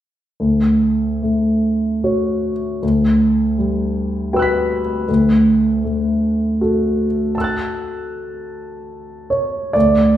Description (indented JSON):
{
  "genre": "classical, impressionist solo piano",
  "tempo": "67-81 BPM",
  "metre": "3/4",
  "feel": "rubato",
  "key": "D major",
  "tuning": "A4 = 439 Hz",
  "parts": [
    { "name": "clear grand piano", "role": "solo", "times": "0.4-10.2 s", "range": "D2 to B6", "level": "-15 LUFS", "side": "equal", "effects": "none" }
  ],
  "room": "wet recital hall reverb, RT60 1.4 s",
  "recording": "heard from further back in the room",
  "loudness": "-15 LUFS",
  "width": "side -12 dB against mid",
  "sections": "0.4-9.7 A section",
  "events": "none",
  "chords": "0.4 Dmaj7; 2.8 Em9/D; 5.1 Dadd9",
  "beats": "| 0.40 1.22 2.03 | 2.83 3.58 4.34 | 5.09 5.84 6.61 | 7.35 8.10 8.89 | 9.75"
}